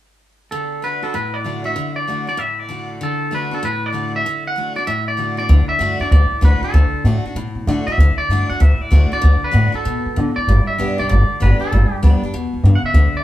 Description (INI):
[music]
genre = rockabilly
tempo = 193 BPM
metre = 4/4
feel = swing 64% on 8ths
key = D major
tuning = A4 = 436 Hz
[part]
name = twangy electric guitar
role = melody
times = 0.5-13.2 s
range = A4 to F#5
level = -21 LUFS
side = equal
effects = none
[part]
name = picked steel-string acoustic guitar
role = accompaniment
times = 0.5-13.2 s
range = G2 to G4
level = -24 LUFS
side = left 1 dB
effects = none
[part]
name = upright bass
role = bass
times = 5.5-13.2 s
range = G1 to D3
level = -14 LUFS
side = equal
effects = none
[sound]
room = light reverb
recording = band playing live in one room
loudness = -15 LUFS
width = side -14 dB against mid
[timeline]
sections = 0.5-5.5 A section; 5.5-13.2 B section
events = none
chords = 0.5 D; 10.5 G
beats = | 0.51 0.82 1.14 1.45 | 1.76 2.07 2.38 2.69 | 3.00 3.32 3.63 3.94 | 4.25 4.56 4.87 5.18 | 5.50 5.81 6.12 6.43 | 6.74 7.05 7.36 7.67 | 7.98 8.29 8.61 8.92 | 9.23 9.54 9.85 10.16 | 10.47 10.78 11.09 11.40 | 11.71 12.02 12.33 12.64 | 12.95